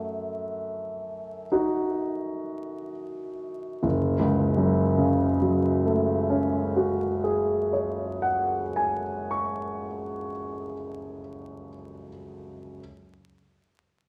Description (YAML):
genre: classical, impressionist solo piano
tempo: 25-30 BPM (dotted quarters)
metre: 9/8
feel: rubato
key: F# minor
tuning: A4 = 440 Hz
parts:
  - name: warm concert grand piano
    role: solo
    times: 0.0-12.8 s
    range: F#1 to C#6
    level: -28 LUFS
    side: equal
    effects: none
room: wet recital hall reverb, RT60 1.6 s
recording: vinyl crackle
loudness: -26 LUFS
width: mono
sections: 0.0-3.8 A section; 3.8-10.6 B section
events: slowing down 0.0-3.8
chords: 0.0 F#m6; 3.8 F#madd9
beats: 1.51 | 3.83 6.11 8.37